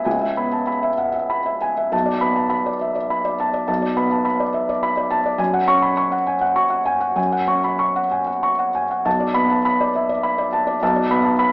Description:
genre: neoclassical minimalist piano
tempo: 94-108 BPM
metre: 3/4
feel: rubato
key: B dorian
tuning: A4 = 440 Hz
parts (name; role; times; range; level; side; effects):
- felt-muted upright piano; solo; 0.0-11.5 s; B1 to C#6; -17 LUFS; equal; none
room: wet recital hall reverb, RT60 1.5 s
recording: recorded in a church or concert hall, AM radio sound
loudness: -17 LUFS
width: side -24 dB against mid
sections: 0.0-9.1 A section; 9.1-11.5 A section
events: none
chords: 0.0 C#m7; 1.9 Bm7; 5.4 F#sus2; 9.1 Bm7

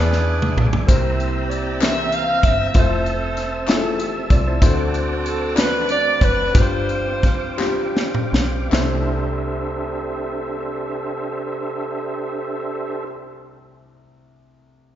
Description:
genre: slow gospel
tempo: 51-64 BPM (dotted quarters)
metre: 6/8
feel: straight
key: C major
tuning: A4 = 438 Hz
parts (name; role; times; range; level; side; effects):
- bright saxophone section; melody; 0.0-8.0 s; C4 to F5; -22 LUFS; right 1 dB; none
- clear grand piano; accompaniment; 0.0-15.0 s; C2 to E5; -26 LUFS; left 3 dB; none
- tonewheel organ; sustained chords; 0.0-13.1 s; C4 to E6; -27 LUFS; right 2 dB; slow rotary speaker, chorus vibrato
- deep dub fingered electric bass; bass; 0.0-13.1 s; F1 to E2; -24 LUFS; equal; none
- tight funk drum kit; drums; 0.1-8.9 s; hi-hat, kick drum, snare drum, toms; -18 LUFS; equal; none
- group handclap; percussion; 1.8-9.1 s; none; -33 LUFS; left 4 dB; none
room: moderate scoring stage reverb, RT60 1.9 s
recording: recorded in a church or concert hall, nothing above 7.5 kHz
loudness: -18 LUFS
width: side -11 dB against mid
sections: 0.0-8.7 A section; 8.7-13.5 B section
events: drum fill 0.0-0.9, 7.6-8.7; slowing down 4.6-8.7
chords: 0.0 E7; 0.9 C7; 2.8 Fmaj7; 4.6 D7; 6.6 G7sus4; 8.7 C69

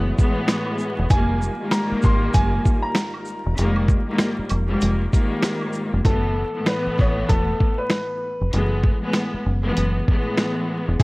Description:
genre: hip hop, boom-bap hip-hop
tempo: 97 BPM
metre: 4/4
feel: swing 60% on 16ths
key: unclear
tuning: A4 = 442 Hz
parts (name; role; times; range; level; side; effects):
- rich studio string section; accompaniment; 0.0-11.0 s; Ab2 to B3; -24 LUFS; left 1 dB; cassette tape, high-pass filter, low-pass filter
- tonewheel organ; sustained chords; 0.0-6.0 s; G3 to C#5; -35 LUFS; equal; chorus vibrato, slow rotary speaker, high-pass filter, low-pass filter
- deep dub fingered electric bass; bass; 0.0-11.0 s; E1 to A1; -22 LUFS; equal; none
- dusty soul sampler-style drum kit; drums; 0.2-11.0 s; hi-hat, kick drum, shaker, snare drum; -19 LUFS; equal; vintage 12-bit sampler grit
- maracas and woodblock; percussion; 0.2-5.9 s; none; -38 LUFS; right 4 dB; none
- warm upright piano; melody; 1.1-11.0 s; Ab4 to C6; -27 LUFS; equal; high-pass filter, low-pass filter
room: small room ambience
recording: worn, warbling old tape, cassette tape, vinyl crackle, warbly pitch drift, faint mains hum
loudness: -19 LUFS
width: side -24 dB against mid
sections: 0.0-6.1 A section; 6.1-11.0 B section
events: none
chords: 0.0 F#m11; 1.1 Fm11; 6.1 F#m11

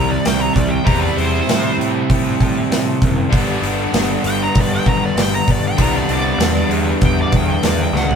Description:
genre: blues rock power trio and southern rock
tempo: 98 BPM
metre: 4/4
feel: straight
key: G major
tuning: A4 = 440 Hz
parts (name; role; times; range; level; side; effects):
- smooth overdriven lead guitar; melody; 0.0-8.2 s; C5 to Bb5; -22 LUFS; equal; wah
- cranked stack guitar; riff; 0.0-8.2 s; G2 to E4; -18 LUFS; right 1 dB; overdrive
- fuzz picked electric bass; bass; 0.0-8.2 s; F#1 to A2; -21 LUFS; equal; overdrive
- big rock drum kit; drums; 0.3-8.2 s; hi-hat, kick drum, snare drum, toms; -18 LUFS; equal; none
room: moderate studio reverb, RT60 0.9 s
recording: band playing live in one room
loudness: -14 LUFS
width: side -6 dB against mid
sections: 0.0-8.2 A section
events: lead electric guitar solo 0.0-8.2; drum fill 7.9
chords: 0.0 C; 3.3 G

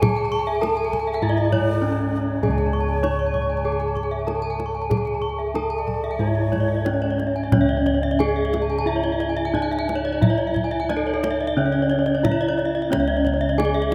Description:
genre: Balinese gamelan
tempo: 89-100 BPM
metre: 4/4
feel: straight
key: C# pelog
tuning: A4 = 443 Hz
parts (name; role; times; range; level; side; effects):
- gamelan-type bronze metallophone; melody; 0.0-13.9 s; C#4 to C#5; -27 LUFS; equal; none
- breathy bansuri; second line; 0.0-7.4 s; C#5 to A5; -35 LUFS; equal; none
- gamelan-type bronze metallophone; arpeggios; 0.0-13.9 s; C#5 to C#6; -30 LUFS; equal; none
- gamelan-type bossed gongs; bass; 0.0-13.9 s; C#2 to G#4; -27 LUFS; equal; none
- kendang; percussion; 0.0-13.9 s; none; -28 LUFS; equal; none
- gamelan-type bronze metallophone; arpeggios; 0.1-13.9 s; A4 to C#6; -31 LUFS; equal; none
room: wet cathedral reverb, RT60 5.7 s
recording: in a vast, echoing space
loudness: -22 LUFS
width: mono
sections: 0.0-7.5 A section; 7.5-13.9 B section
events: none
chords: none

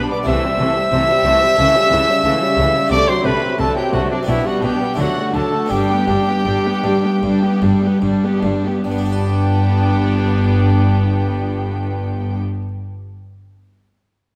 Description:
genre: classical, baroque-style concerto movement with solo episodes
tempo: 72-91 BPM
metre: 4/4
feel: straight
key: G major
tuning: A4 = 439 Hz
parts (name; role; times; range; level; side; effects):
- rich chamber violin section; melody; 0.0-12.4 s; D5 to E6; -29 LUFS; equal; none
- rich chamber violin section; second line; 0.0-12.4 s; A3 to G4; -28 LUFS; equal; none
- harpsichord; accompaniment; 0.0-12.7 s; G2 to D5; -24 LUFS; equal; none
- rich chamber viola section; accompaniment; 0.0-12.4 s; D3 to B3; -25 LUFS; equal; none
- mellow trumpet; melody; 0.1-12.4 s; D4 to E5; -22 LUFS; equal; none
- rich chamber cello section; bass; 0.3-12.4 s; G2 to D3; -24 LUFS; equal; none
- rich chamber double bass section; bass; 0.3-12.4 s; G1 to D2; -26 LUFS; equal; none
room: wet recital hall reverb, RT60 1.7 s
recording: none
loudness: -17 LUFS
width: mono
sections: 0.0-8.8 A section; 8.8-12.2 B section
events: slowing down 1.6-8.8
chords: 0.3 Am7/C; 1.6 A7/C#; 2.9 D7/C; 4.3 G/B; 5.0 D; 5.7 G

